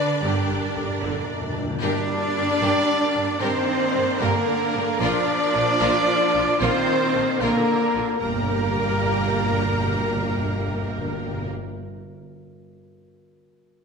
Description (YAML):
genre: cinematic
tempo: 75 BPM (dotted quarters)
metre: 6/8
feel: straight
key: G minor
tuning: A4 = 441 Hz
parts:
  - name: warm symphonic violin section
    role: melody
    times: 0.0-11.5 s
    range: G4 to Bb5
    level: -32 LUFS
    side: left 2 dB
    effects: none
  - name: mellow hollow large flute ensemble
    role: second line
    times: 0.0-1.0 s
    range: G4 to D5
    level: -35 LUFS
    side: left 1 dB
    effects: none
  - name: warm symphonic violin section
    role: second line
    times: 0.0-11.5 s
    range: D4 to D5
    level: -31 LUFS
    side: left 3 dB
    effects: none
  - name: rich symphonic viola section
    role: accompaniment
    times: 0.0-11.5 s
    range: D3 to Bb4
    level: -29 LUFS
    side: right 3 dB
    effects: none
  - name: mellow French horn section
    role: sustained chords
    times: 0.0-11.5 s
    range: G3 to D4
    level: -26 LUFS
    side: left 3 dB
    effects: none
  - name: warm symphonic string section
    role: sustained chords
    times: 0.0-11.5 s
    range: Bb3 to D5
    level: -30 LUFS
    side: right 2 dB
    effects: none
  - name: rich studio cello section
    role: bass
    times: 0.0-11.5 s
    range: G2 to D4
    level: -29 LUFS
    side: right 4 dB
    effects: none
  - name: clear symphonic double bass section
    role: bass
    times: 0.2-11.5 s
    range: G1 to G2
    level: -29 LUFS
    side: right 5 dB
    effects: none
  - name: timpani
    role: percussion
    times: 0.2-2.6, 8.2-11.5 s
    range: G2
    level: -30 LUFS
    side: left 2 dB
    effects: none
  - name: mellow trumpet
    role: stabs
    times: 1.8-11.5 s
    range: Bb4 to D5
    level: -26 LUFS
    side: right 1 dB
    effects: none
room: wet scoring stage reverb, RT60 1.7 s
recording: none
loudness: -20 LUFS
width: side -5 dB against mid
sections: 0.0-1.8 A section; 1.8-8.2 B section; 8.2-11.4 C section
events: timpani fill 0.2-1.8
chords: 0.2 Gm; 5.0 Bb; 8.2 Gm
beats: | 0.23 1.02 | 1.82 2.62 | 3.42 4.21 | 5.01 5.81 | 6.61 7.40 | 8.20 9.00 | 9.80 10.60